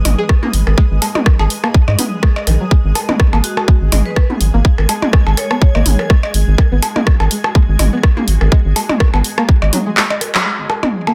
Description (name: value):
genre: minimal techno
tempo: 124 BPM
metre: 4/4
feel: swing 55% on 16ths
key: G# minor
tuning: A4 = 440 Hz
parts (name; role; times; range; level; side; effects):
- rubbery square bass; bass; 0.0-11.1 s; G#1 to G#2; -15 LUFS; equal; sidechain pumping, high-pass filter
- granular cloud pad; texture; 0.0-11.1 s; G#3 to G#6; -32 LUFS; equal; built-in reverb, sidechain pumping
- pulsing gated texture; texture; 0.0-11.1 s; G#3 to B4; -34 LUFS; equal; none
- punchy analog drum machine; drums; 0.1-10.4 s; handclaps, hi-hat, rim click; -21 LUFS; equal; low-pass filter on hats, soft clipping on snare, low-pass filter on snare
- electronic toms and percussion blips; percussion; 0.1-11.1 s; none; -21 LUFS; equal; tape echo
- string-like resonator pluck; riff; 0.2-11.1 s; D#3 to G#4; -25 LUFS; equal; subtle chorus, cassette tape, sidechain pumping, digital delay
- electronic kick drum; drums; 0.3-9.6 s; none; -13 LUFS; equal; none
- vibraphone with medium hard mallets; melody; 3.4-6.1 s; F#4 to C#5; -28 LUFS; equal; tape echo
room: little or no reverb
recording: dense, heavily limited modern master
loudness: -14 LUFS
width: mono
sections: 0.0-10.5 A section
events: drum fill 10.0-10.5; band accent 10.3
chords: 0.0 G#5